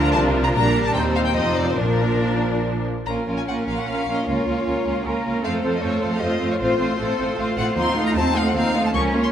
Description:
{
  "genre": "quick classical-period movement for string orchestra",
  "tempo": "138-158 BPM",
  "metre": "3/4",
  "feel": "rubato",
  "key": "Bb major, Bb minor from 3.1 s",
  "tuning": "A4 = 440 Hz",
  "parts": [
    { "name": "rich chamber violin section", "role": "melody", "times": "0.0-9.3 s", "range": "Bb4 to Db6", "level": "-26 LUFS", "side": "left 4 dB", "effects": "none" },
    { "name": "rich chamber violin section", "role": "second line", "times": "0.0-9.3 s", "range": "Db4 to Db5", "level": "-27 LUFS", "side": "left 2 dB", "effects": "none" },
    { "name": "rich studio viola section", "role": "accompaniment", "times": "0.0-9.3 s", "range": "F3 to Eb4", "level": "-23 LUFS", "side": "right 1 dB", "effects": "none" },
    { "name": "clear chamber double bass section", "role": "bass", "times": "0.0-9.3 s", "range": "F1 to F2", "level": "-26 LUFS", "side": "right 1 dB", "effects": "none" },
    { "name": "clear studio cello section", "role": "bass", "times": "0.0-9.3 s", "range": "Eb2 to Bb4", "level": "-26 LUFS", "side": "right 2 dB", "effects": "none" }
  ],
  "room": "moderate concert hall reverb, RT60 2.1 s",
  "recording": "minimal, uncompressed stereo recording, vinyl crackle",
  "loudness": "-19 LUFS",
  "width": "side -9 dB against mid",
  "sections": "0.0-3.1 A section; 3.1-9.3 B section",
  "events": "none",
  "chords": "0.0 Bb; 0.9 Cm/Eb; 1.4 F5; 1.8 Bb; 3.1 Bbm; 4.3 Bbm/Db; 5.4 F; 6.6 F/A; 7.8 F7/Eb",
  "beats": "0.15 | 0.55 0.95 1.36 | 1.78 2.22 2.65 | 3.07 3.48 3.88 | 4.28 4.67 5.06 | 5.45 5.83 6.22 | 6.61 6.99 7.38 | 7.76 8.15 8.54 | 8.94"
}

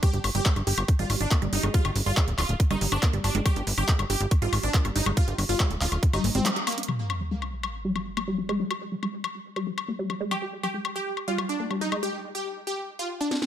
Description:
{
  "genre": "psychedelic trance",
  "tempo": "140 BPM",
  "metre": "4/4",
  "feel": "straight",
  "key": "G phrygian",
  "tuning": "A4 = 440 Hz",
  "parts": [
    { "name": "supersaw stab", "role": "melody", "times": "0.0-6.8, 10.3-13.3 s", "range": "Bb3 to G4", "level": "-31 LUFS", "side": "right 1 dB", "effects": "phaser, sidechain pumping, tape echo" },
    { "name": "woody wave-folded pluck", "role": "riff", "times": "0.0-12.0 s", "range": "G3 to G4", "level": "-32 LUFS", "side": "moving between left 2 dB and right 6 dB", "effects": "chorus, auto-pan, sidechain pumping, tape echo" },
    { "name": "drum and bass drum kit", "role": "drums", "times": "0.0-13.5 s", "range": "handclaps, hi-hat, snare drum, woodblock", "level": "-30 LUFS", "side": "left 2 dB", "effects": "overdrive" },
    { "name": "electronic kick drum", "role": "drums", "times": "0.0-6.1 s", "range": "none", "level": "-22 LUFS", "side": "equal", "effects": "overdrive" },
    { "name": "plucky analog bass", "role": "bass", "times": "0.1-6.4 s", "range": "D1 to Ab1", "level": "-27 LUFS", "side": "equal", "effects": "none" },
    { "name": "sub drop", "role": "sound effects", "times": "6.9-8.6 s", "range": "none", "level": "-34 LUFS", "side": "equal", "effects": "none" }
  ],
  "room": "light reverb",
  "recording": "none",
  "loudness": "-24 LUFS",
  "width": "side -10 dB against mid",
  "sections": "0.0-6.9 A section; 6.9-13.5 B section",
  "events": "drop 0.0-6.9; break 6.5-6.9; band accent 6.5; drum fill 6.7; impact 6.9-8.6; filter sweep on synth arpeggio sound 6.9-13.5",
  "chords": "0.0 G5; 6.9 N.C.",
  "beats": "| 0.03 0.46 0.88 1.31 | 1.74 2.17 2.60 3.03 | 3.46 3.88 4.31 4.74 | 5.17 5.60 6.03 6.46 | 6.88 7.31 7.74 8.17 | 8.60 9.03 9.46 9.88 | 10.31 10.74 11.17 11.60 | 12.03 12.46 12.88 13.31"
}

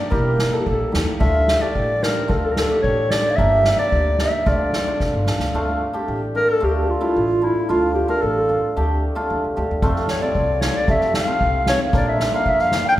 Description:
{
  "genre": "klezmer",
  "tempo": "112 BPM",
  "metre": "2/4",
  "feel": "straight",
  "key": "D minor",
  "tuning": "A4 = 440 Hz",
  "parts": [
    { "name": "mellow clarinet", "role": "melody", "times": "0.0-12.9 s", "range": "E4 to G5", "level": "-20 LUFS", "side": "left 1 dB", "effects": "none" },
    { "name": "breathy mellow round clay ocarina", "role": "second line", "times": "0.0-13.0 s", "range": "E4 to G5", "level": "-25 LUFS", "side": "right 2 dB", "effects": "none" },
    { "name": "hammered dulcimer", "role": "accompaniment", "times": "0.1-12.9 s", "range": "A3 to A4", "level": "-24 LUFS", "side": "equal", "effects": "none" },
    { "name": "upright bass", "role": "bass", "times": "0.1-12.8 s", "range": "E1 to F2", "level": "-24 LUFS", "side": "equal", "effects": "none" },
    { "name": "soft-mallet drum kit", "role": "drums", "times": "0.1-5.5, 9.8-12.8 s", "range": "kick drum, snare drum", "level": "-23 LUFS", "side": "equal", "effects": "none" }
  ],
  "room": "wet recital hall reverb, RT60 1.7 s",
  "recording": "recorded in a church or concert hall",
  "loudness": "-17 LUFS",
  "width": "side -14 dB against mid",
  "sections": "0.0-5.5 A section; 5.5-13.0 B section",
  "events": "speeding up 0.0-13.0; drum fill 5.0-5.5; clarinet solo 5.5-13.0",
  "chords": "0.1 Edim; 1.2 Dm; 3.4 Gm; 4.5 Dm; 9.8 F; 11.9 Bb",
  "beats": "| 0.12 0.66 | 1.21 1.75 | 2.30 2.84 | 3.38 3.93 | 4.47 5.01 | 5.55 6.09 | 6.62 7.16 | 7.70 8.23 | 8.76 9.29 | 9.83 10.36 | 10.88 11.41 | 11.94 12.46 | 12.99"
}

